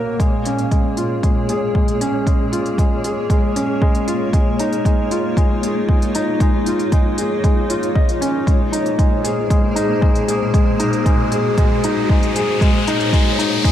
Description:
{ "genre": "piano and strings electronica", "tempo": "116 BPM", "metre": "4/4", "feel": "straight", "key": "Bb minor", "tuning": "A4 = 438 Hz", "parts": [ { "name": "granular cloud pad", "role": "sustained chords", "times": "0.0-13.7 s", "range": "Bb2 to F5", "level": "-23 LUFS", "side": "equal", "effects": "built-in reverb, sidechain pumping" }, { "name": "felt-muted upright piano", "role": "riff", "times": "0.0-13.7 s", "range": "Ab3 to Eb5", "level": "-19 LUFS", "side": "left 1 dB", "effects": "digital delay" }, { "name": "electronic hi-hat", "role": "drums", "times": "0.2-13.7 s", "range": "none", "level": "-30 LUFS", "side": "left 1 dB", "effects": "none" }, { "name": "electronic kick drum", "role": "drums", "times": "0.2-13.7 s", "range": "none", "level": "-16 LUFS", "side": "equal", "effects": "none" }, { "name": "riser", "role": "sound effects", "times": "10.1-13.7 s", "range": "none", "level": "-25 LUFS", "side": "left 3 dB", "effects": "none" } ], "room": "moderate scoring stage reverb, RT60 2.1 s", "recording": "none", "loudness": "-15 LUFS", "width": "side -11 dB against mid", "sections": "0.2-13.7 A section", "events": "build-up 0.2-13.7; riser 10.1-13.7", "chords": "0.2 Bbm7; 4.3 Dbadd9; 8.5 Ab/Bb; 12.6 Gb/Bb", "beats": "| 0.20 0.72 1.24 1.75 | 2.27 2.79 3.31 3.82 | 4.34 4.86 5.37 5.89 | 6.41 6.93 7.44 7.96 | 8.48 8.99 9.51 10.03 | 10.55 11.06 11.58 12.10 | 12.62 13.13 13.65" }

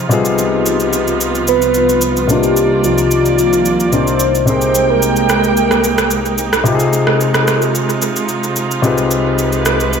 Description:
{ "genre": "amapiano", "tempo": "110 BPM", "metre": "4/4", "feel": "straight", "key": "unclear", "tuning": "A4 = 444 Hz", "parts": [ { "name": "warm grand piano", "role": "accompaniment", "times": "0.0-10.0 s", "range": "C3 to B4", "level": "-17 LUFS", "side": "left 4 dB", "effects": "none" }, { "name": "warm studio string section", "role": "sustained chords", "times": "0.0-10.0 s", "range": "C2 to G5", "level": "-17 LUFS", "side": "right 3 dB", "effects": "none" }, { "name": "electronic shaker and rim click", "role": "drums", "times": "0.1-10.0 s", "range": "none", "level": "-19 LUFS", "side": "right 1 dB", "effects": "analog delay" }, { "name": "soft octave-layered synth lead", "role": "melody", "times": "1.5-6.4 s", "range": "F4 to C5", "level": "-14 LUFS", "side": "equal", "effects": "chorus, phaser, analog delay" } ], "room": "light reverb, small room ambience", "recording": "echo-heavy mix", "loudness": "-11 LUFS", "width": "side -6 dB against mid", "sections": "0.0-10.0 A section", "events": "none", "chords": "0.1 G7b9b13/C; 2.3 Cm11; 4.5 Abmaj9/C; 6.7 Ab6/C", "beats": "| 0.11 0.66 1.20 1.75 | 2.29 2.84 3.38 3.93 | 4.47 5.02 5.57 6.11 | 6.66 7.20 7.75 8.29 | 8.84 9.38 9.93" }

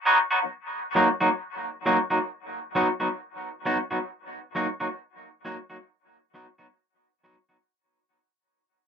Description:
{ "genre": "reggae", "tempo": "67 BPM", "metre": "4/4", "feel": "swing 56% on 16ths", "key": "Eb minor", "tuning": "A4 = 439 Hz", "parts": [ { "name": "clean electric guitar", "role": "accompaniment", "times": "0.1-7.6 s", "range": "F#3 to F#4", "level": "-23 LUFS", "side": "equal", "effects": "high-pass filter, dub echo" } ], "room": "light reverb", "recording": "dry, close 1970s-style studio recording", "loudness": "-24 LUFS", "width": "side -7 dB against mid", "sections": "0.5-7.7 A section", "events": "fade-out 0.5-7.7", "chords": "0.0 B; 0.5 Ebm; 2.3 B; 4.1 Ebm; 5.9 B", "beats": "| 0.51 1.41 2.30 3.20 | 4.10 4.99 5.89 6.79" }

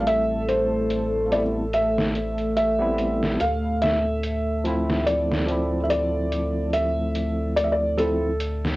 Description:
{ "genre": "trip hop", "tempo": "72 BPM", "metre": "4/4", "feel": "swing 55% on 16ths", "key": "unclear", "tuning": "A4 = 440 Hz", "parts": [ { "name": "felt-muted upright piano", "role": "melody", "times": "0.0-8.8 s", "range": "A4 to F5", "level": "-24 LUFS", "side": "equal", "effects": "tape echo" }, { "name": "barky tine electric piano", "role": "accompaniment", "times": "0.0-8.3 s", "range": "F3 to E4", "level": "-28 LUFS", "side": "equal", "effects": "overdrive, harmonic tremolo, cassette tape, tape echo" }, { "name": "dark analog pad", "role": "sustained chords", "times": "0.0-8.8 s", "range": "A3 to A4", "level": "-28 LUFS", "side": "equal", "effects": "chorus, cassette tape" }, { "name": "round analog bass", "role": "bass", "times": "0.0-8.8 s", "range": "A1 to D2", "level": "-29 LUFS", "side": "equal", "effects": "tube saturation" }, { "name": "trip hop sampler-style drum kit", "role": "drums", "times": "0.1-8.8 s", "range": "hi-hat, snare drum", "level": "-29 LUFS", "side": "equal", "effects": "overdrive, low-pass filter on hats, cassette tape, low-pass filter on snare" } ], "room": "light reverb", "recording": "home recording on cassette", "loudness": "-21 LUFS", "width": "side -19 dB against mid", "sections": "0.0-8.8 A section", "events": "none", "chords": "0.0 Am7; 3.4 Dm7", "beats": "| 0.07 0.90 1.74 2.57 | 3.40 4.24 5.07 5.90 | 6.74 7.57 8.40" }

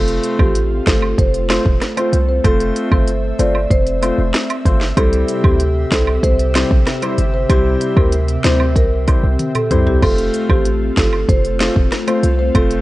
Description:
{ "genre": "dancehall", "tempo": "95 BPM", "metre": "4/4", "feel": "straight", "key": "F major", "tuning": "A4 = 438 Hz", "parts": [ { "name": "marimba with medium mallets", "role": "melody", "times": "0.0-12.7 s", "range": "G4 to D5", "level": "-20 LUFS", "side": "right 1 dB", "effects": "digital delay" }, { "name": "warm concert grand piano", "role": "accompaniment", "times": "0.0-12.8 s", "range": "G3 to C5", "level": "-21 LUFS", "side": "left 2 dB", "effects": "sidechain pumping" }, { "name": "airy breathy pad", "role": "sustained chords", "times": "0.0-12.8 s", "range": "C3 to E5", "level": "-24 LUFS", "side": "left 1 dB", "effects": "chorus, sidechain pumping" }, { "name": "warm 808-style bass", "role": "bass", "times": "0.0-12.8 s", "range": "E1 to D2", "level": "-18 LUFS", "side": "equal", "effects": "none" }, { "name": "afro-pop drum kit", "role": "drums", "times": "0.1-12.8 s", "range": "crash cymbal, hi-hat, kick drum, rim click, snare drum, toms", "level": "-16 LUFS", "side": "equal", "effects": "none" }, { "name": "cabasa and woodblock", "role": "percussion", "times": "0.2-12.7 s", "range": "none", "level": "-28 LUFS", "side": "right 5 dB", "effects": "none" } ], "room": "digital ambience", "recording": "worn, warbling old tape, cassette tape, warbly pitch drift, nothing above 10.4 kHz", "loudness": "-13 LUFS", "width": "side -17 dB against mid", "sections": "0.0-12.8 A section", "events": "drum fill 9.4-10.0", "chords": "0.0 F; 5.0 C; 10.0 F", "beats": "0.55 1.18 1.81 | 2.45 3.08 3.71 4.34 | 4.97 5.60 6.24 6.87 | 7.50 8.13 8.76 9.39 | 10.03 10.66 11.29 11.92 | 12.55" }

